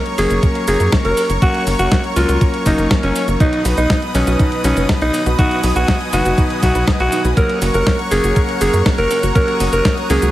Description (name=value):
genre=italo disco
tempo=121 BPM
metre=4/4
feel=straight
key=unclear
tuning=A4 = 440 Hz
part: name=raspy alto saxophone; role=melody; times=0.0-10.3 s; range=Db4 to Bb4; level=-18 LUFS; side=equal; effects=ping-pong delay
part: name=lush unison pad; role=sustained chords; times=0.0-10.3 s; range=Bb4 to D#6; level=-23 LUFS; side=equal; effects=chorus
part: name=clear electric grand piano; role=stabs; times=0.0-10.3 s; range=B2 to B4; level=-22 LUFS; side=left 2 dB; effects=none
part: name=clean 12-bit digital drum machine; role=drums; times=0.1-10.3 s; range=cabasa, hi-hat, snare drum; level=-22 LUFS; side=equal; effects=studio reverb
part: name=tight sequencer bass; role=bass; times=0.2-10.3 s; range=Gb1 to Gb2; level=-18 LUFS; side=equal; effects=none
part: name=electronic kick drum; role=drums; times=0.4-9.9 s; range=none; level=-16 LUFS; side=equal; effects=studio reverb
part: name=soft round pluck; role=arpeggios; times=3.4-10.3 s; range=Db4 to D#5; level=-26 LUFS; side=right 2 dB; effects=chorus, ping-pong delay
room=light reverb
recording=heavily compressed radio sound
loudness=-13 LUFS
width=side -14 dB against mid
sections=0.0-10.3 A section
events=none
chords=0.0 Gb; 3.4 B; 7.4 Gb